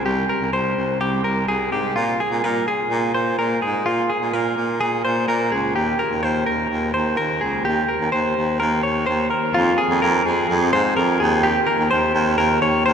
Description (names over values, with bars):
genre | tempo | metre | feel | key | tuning
jangly indie pop | 126 BPM | 4/4 | straight | unclear | A4 = 440 Hz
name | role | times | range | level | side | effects
direct-recorded clean electric guitar | arpeggios | 0.0-12.9 s | F4 to Db5 | -20 LUFS | left 1 dB | none
breathy baritone saxophone | bass | 0.0-12.9 s | C2 to Bb2 | -21 LUFS | right 1 dB | none
room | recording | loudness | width
wet cathedral reverb, RT60 7.1 s | recorded in a church or concert hall, vinyl crackle | -18 LUFS | side -7 dB against mid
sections
0.0-9.6 A section; 9.6-12.9 B section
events
none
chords
0.0 C5; 2.0 Bb5; 5.8 Eb; 9.6 Fm; 11.2 Eb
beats
| 0.06 0.53 1.01 1.48 | 1.96 2.43 2.91 3.38 | 3.86 4.33 4.81 5.28 | 5.76 6.23 6.71 7.18 | 7.66 8.13 8.60 9.08 | 9.55 10.02 10.50 10.97 | 11.44 11.91 12.38 12.86